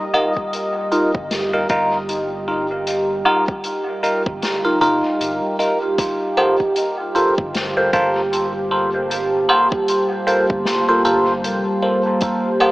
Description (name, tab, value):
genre	ambient dub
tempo	77 BPM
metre	4/4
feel	swing 58% on 16ths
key	G minor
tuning	A4 = 440 Hz
part	deep dark ambient pad	sustained chords	0.0-12.7 s	G3 to A5	-21 LUFS	right 1 dB	chorus, built-in reverb
part	bell-like tine electric piano	stabs	0.1-12.7 s	Eb4 to C5	-18 LUFS	equal	phaser, dub echo
part	soft-mallet drum kit	drums	0.1-12.7 s	hi-hat, snare drum, woodblock	-25 LUFS	equal	dub echo
part	electronic kick drum	drums	0.4-12.4 s	none	-24 LUFS	equal	overdrive
part	soft dub sub bass	bass	1.1-11.6 s	F1 to G1	-35 LUFS	equal	tube saturation
room	moderate huge ambient reverb, RT60 8.5 s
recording	AM radio sound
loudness	-16 LUFS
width	side -19 dB against mid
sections	0.0-6.0 A section; 6.0-12.7 B section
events	none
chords	0.0 Ebsus2; 6.0 Gm11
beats	0.53 1.31 2.09 | 2.87 3.65 4.43 5.21 | 5.99 6.76 7.54 8.32 | 9.10 9.88 10.66 11.44 | 12.22